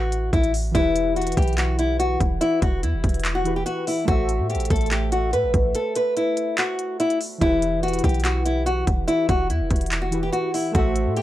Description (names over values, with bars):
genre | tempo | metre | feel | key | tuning
hip hop, trap | 144 BPM | 4/4 | half-time | E minor | A4 = 440 Hz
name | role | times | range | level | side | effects
nylon-string guitar | melody | 0.0-11.2 s | E4 to B4 | -23 LUFS | left 1 dB | analog delay
clean 808-style bass | bass | 0.0-11.2 s | E1 to A2 | -24 LUFS | equal | none
trap drum kit | drums | 0.1-11.2 s | handclaps, hi-hat, kick drum | -24 LUFS | equal | none
warbly lo-fi synth keys | accompaniment | 0.7-11.2 s | E3 to E5 | -29 LUFS | equal | chorus
room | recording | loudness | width
little or no reverb | dry, gritty hardware recording | -19 LUFS | side -14 dB against mid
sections
0.0-11.2 A section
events
break 5.7-7.4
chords
0.0 A5; 0.7 Em; 4.1 Am; 7.4 Em